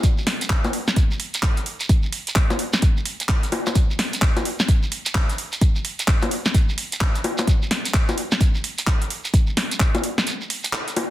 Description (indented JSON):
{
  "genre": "UK garage",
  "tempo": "129 BPM",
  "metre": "4/4",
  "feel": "swing 62% on 16ths",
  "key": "none",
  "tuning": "none",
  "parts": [
    { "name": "electronic kick drum", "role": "drums", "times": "0.0-9.9 s", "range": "none", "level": "-18 LUFS", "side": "equal", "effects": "none" },
    { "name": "house drum kit", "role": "drums", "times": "0.0-11.1 s", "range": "bongos, handclaps, hi-hat, snare drum", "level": "-23 LUFS", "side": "equal", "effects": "soft clipping on snare" },
    { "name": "shekere", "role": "percussion", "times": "0.0-10.9 s", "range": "none", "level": "-30 LUFS", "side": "right 2 dB", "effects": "none" }
  ],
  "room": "little or no reverb",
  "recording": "dense, heavily limited modern master",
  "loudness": "-19 LUFS",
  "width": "side -14 dB against mid",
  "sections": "0.0-11.1 A section",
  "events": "break 10.3-11.1",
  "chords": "none"
}